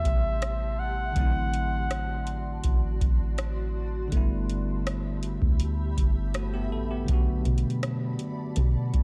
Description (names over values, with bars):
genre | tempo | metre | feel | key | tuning
contemporary R&B | 81 BPM | 4/4 | straight | unclear | A4 = 440 Hz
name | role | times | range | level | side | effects
breathy flugelhorn | melody | 0.0-3.0 s | E5 to F#5 | -34 LUFS | equal | none
bell-like tine electric piano | accompaniment | 0.0-9.0 s | C3 to A4 | -36 LUFS | equal | none
granular cloud pad | sustained chords | 0.0-9.0 s | F#4 to C6 | -44 LUFS | equal | built-in reverb
soft 808-style bass | bass | 0.0-9.0 s | G1 to B2 | -32 LUFS | equal | none
booming analog drum machine | drums | 0.0-9.0 s | hi-hat, kick drum, rim click | -27 LUFS | equal | none
room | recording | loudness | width
little or no reverb | none | -27 LUFS | mono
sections
0.0-9.0 A section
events
none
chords
0.0 Am7; 1.2 D7/A; 4.1 G69; 7.1 Bm7